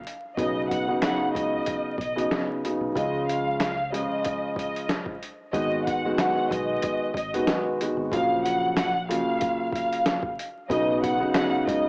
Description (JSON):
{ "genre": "hip hop, boom-bap hip-hop", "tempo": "93 BPM", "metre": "4/4", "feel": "swing 54% on 16ths", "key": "G# dorian", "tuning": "A4 = 440 Hz", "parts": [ { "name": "boom bap sampler-style drum kit", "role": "drums", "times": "0.1-11.8 s", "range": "hi-hat, kick drum, snare drum", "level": "-32 LUFS", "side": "equal", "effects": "none" }, { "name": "rich studio violin section", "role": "melody", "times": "0.4-11.9 s", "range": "D#5 to F#5", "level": "-30 LUFS", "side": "equal", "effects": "high-pass filter, low-pass filter, cassette tape, analog delay" }, { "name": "dark concert grand piano", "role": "accompaniment", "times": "0.4-11.9 s", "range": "C#3 to F#4", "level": "-29 LUFS", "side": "equal", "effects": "cassette tape, high-pass filter, low-pass filter" }, { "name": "deep dub fingered electric bass", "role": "bass", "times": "0.4-11.9 s", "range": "G#1 to C#2", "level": "-38 LUFS", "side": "equal", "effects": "none" }, { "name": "finger snap", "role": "percussion", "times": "1.0-5.1, 11.3-11.5 s", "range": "none", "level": "-41 LUFS", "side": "equal", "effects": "none" } ], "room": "light reverb, small room ambience", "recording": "home recording on cassette, vinyl crackle, small speaker sound", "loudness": "-26 LUFS", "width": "mono", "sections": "0.0-5.5 A section; 5.5-11.9 B section", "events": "none", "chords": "0.4 Badd9; 3.0 C#; 5.5 G#m7; 8.1 F#maj7/A#; 10.7 Badd9", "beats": "| 0.38 1.02 1.67 2.31 | 2.96 3.60 4.25 4.89 | 5.54 6.18 6.83 7.47 | 8.12 8.76 9.41 10.05 | 10.70 11.35" }